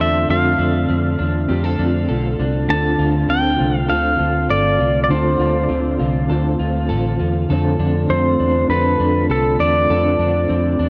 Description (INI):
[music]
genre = dream pop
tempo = 100 BPM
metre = 4/4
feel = straight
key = unclear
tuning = A4 = 440 Hz
[part]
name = pedal steel guitar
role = melody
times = 0.0-10.9 s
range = A4 to A5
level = -22 LUFS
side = equal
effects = tape echo
[part]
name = mellow electric guitar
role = accompaniment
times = 0.0-10.9 s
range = D3 to C5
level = -26 LUFS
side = equal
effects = tremolo, ensemble chorus
[part]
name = mellow tonewheel organ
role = sustained chords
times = 0.0-10.9 s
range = D3 to F4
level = -26 LUFS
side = equal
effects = chorus vibrato, slow rotary speaker
[part]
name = electric guitar at the edge of break-up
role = arpeggios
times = 0.0-10.9 s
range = D3 to A4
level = -26 LUFS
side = equal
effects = subtle chorus, tape echo
[part]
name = vintage muted fingered electric bass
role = bass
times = 0.0-10.9 s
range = G1 to F2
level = -23 LUFS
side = equal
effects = none
[sound]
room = moderate huge ambient reverb, RT60 4.3 s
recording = worn, warbling old tape, cassette tape, warbly pitch drift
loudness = -17 LUFS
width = mono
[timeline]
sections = 0.0-10.9 A section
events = none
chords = 0.0 F6; 2.7 Dm7; 7.5 F6